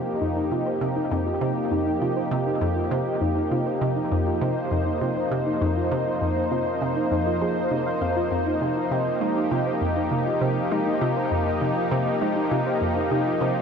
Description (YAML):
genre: ambient, sequencer-driven space music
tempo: 100 BPM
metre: 4/4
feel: straight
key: unclear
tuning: A4 = 440 Hz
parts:
  - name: lush unison pad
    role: sustained chords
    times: 0.0-13.6 s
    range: F3 to C5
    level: -24 LUFS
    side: left 1 dB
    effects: chorus, shimmer reverb
  - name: hollow square pluck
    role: riff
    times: 0.0-13.6 s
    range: F2 to Ab3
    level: -27 LUFS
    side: equal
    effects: chorus, phaser, tape echo
  - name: soft round pluck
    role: arpeggios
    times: 0.2-13.5 s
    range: Eb4 to F5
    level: -29 LUFS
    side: moving between left 1 dB and right 6 dB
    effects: chorus, auto-pan, tape echo
room: wet huge ambient reverb, RT60 7.7 s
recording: none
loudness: -22 LUFS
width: side -6 dB against mid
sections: 0.0-13.6 A section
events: none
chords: 0.0 F7(no3)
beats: 0.51 | 1.11 1.71 2.31 2.91 | 3.51 4.11 4.71 5.31 | 5.91 6.51 7.11 7.71 | 8.31 8.91 9.51 10.11 | 10.71 11.31 11.91 12.51 | 13.11